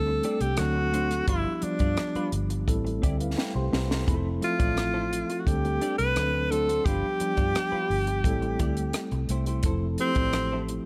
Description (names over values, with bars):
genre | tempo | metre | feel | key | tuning
lush 1970s-style soul | 86 BPM | 4/4 | straight | A minor | A4 = 440 Hz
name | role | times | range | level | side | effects
clear tenor saxophone | melody | 0.0-10.7 s | C4 to B4 | -30 LUFS | equal | none
mellow tine electric piano | accompaniment | 0.0-10.9 s | F3 to C6 | -34 LUFS | equal | none
vintage muted fingered electric bass | bass | 0.0-10.8 s | F1 to G2 | -32 LUFS | equal | none
semi-hollow electric guitar | riff | 0.1-10.7 s | G3 to D5 | -40 LUFS | equal | analog chorus
compact cocktail drum kit | drums | 0.2-10.8 s | hi-hat, kick drum, rim click, snare drum | -31 LUFS | equal | none
room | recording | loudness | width
studio reverb | none | -27 LUFS | mono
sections
0.0-10.9 A section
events
tine electric piano fill 2.7-4.1; drum fill 3.4-4.1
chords
0.0 D7sus4; 0.6 D7; 1.3 G7; 2.7 Am7; 4.1 Fmaj7; 5.5 D7sus4; 6.2 D7; 6.9 G7; 8.2 Am7; 9.6 Fmaj7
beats
0.58 | 1.28 1.98 2.67 3.37 | 4.07 4.76 5.46 6.16 | 6.85 7.55 8.25 8.94 | 9.64 10.34